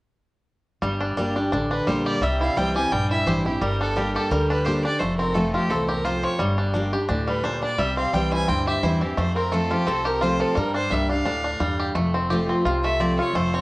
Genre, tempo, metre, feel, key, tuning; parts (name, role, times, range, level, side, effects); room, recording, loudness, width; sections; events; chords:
bluegrass; 173 BPM; 4/4; swing 54% on 8ths; G dorian; A4 = 440 Hz
picked steel-string acoustic guitar; accompaniment; 0.8-13.6 s; E2 to G4; -25 LUFS; equal; cassette tape
bluegrass banjo; arpeggios; 0.8-13.6 s; E3 to G4; -26 LUFS; equal; cassette tape
upright bass; bass; 0.8-13.6 s; F1 to G2; -28 LUFS; equal
clear fiddle; melody; 1.7-13.6 s; G4 to Ab5; -27 LUFS; right 1 dB
lap resonator guitar; second line; 1.7-13.6 s; G4 to Ab5; -34 LUFS; left 1 dB
moderate spring reverb, RT60 2.1 s; home recording on cassette; -20 LUFS; side -21 dB against mid
0.8-12.0 A section; 12.0-13.6 B section
0.8 Gm; 2.2 C; 3.6 Gm; 5.0 F; 6.4 Gm; 7.8 C; 9.2 F; 10.6 Gm; 12.0 F